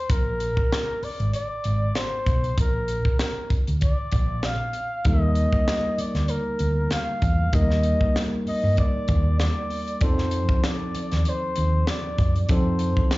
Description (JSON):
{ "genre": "lush 1970s-style soul", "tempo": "97 BPM", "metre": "4/4", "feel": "swing 54% on 16ths", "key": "Bb major", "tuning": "A4 = 441 Hz", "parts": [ { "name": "breathy flugelhorn", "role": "melody", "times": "0.0-13.2 s", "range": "Bb4 to F5", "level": "-28 LUFS", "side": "equal", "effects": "slapback echo" }, { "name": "hollow-body short-scale fingered electric bass", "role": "bass", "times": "0.1-13.0 s", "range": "Ab1 to G2", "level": "-23 LUFS", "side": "equal", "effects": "none" }, { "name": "tight funk drum kit", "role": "drums", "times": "0.1-13.2 s", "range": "hi-hat, kick drum, snare drum", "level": "-24 LUFS", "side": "equal", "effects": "none" }, { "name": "tine electric piano", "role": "accompaniment", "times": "5.0-13.2 s", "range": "F3 to Bb4", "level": "-28 LUFS", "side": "equal", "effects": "slapback echo" } ], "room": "small room ambience", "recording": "live gig heard through the venue's PA, club reverb, nothing above 7.7 kHz", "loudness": "-21 LUFS", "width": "side -20 dB against mid", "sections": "0.0-13.2 A section", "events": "none", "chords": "0.1 Bb7; 5.1 Ebmaj7; 10.0 F7" }